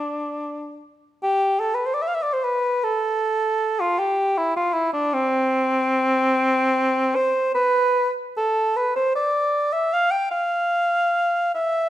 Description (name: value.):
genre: classical, free, expressive piece for unaccompanied cor anglais.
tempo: 76 BPM.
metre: 4/4.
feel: uneven beats, rubato.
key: C major.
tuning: A4 = 440 Hz.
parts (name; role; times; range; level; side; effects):
dark cor anglais; solo; 0.0-11.9 s; C4 to G5; -19 LUFS; equal; none.
room: moderate recital hall reverb, RT60 1.3 s.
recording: none.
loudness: -19 LUFS.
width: side -13 dB against mid.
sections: 0.0-11.9 A section.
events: none.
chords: none.